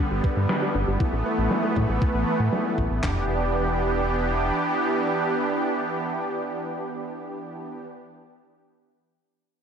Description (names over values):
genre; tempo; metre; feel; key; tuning
synthwave; 118 BPM; 4/4; straight; E minor; A4 = 440 Hz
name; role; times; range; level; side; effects
soft supersaw; sustained chords; 0.0-7.9 s; D3 to G4; -24 LUFS; right 1 dB; wide subtle chorus, sidechain pumping
soft round pluck; arpeggios; 0.0-3.3 s; D4 to E5; -34 LUFS; left 2 dB; chorus, analog delay
round analog bass; bass; 0.1-4.5 s; E1 to A2; -26 LUFS; equal; none
gated 80s digital drum machine; drums; 0.2-3.2 s; handclaps, kick drum, toms; -25 LUFS; equal; gated reverb
gated 80s digital drum machine; drums; 0.2-2.9 s; hi-hat, snare drum; -31 LUFS; left 1 dB; gated reverb, gated reverb snare, low-pass filter on hats, low-pass filter on snare
room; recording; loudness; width
wet lush hall reverb, RT60 1.9 s, digital ambience; dreamy mix soaked in reverb; -22 LUFS; side -7 dB against mid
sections
0.0-3.0 A section; 3.0-7.1 B section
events
filter sweep on drum 0.0-3.0; filter sweep on synth arpeggio sound 0.0-3.0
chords
0.0 G; 1.0 Asus2; 3.0 Em7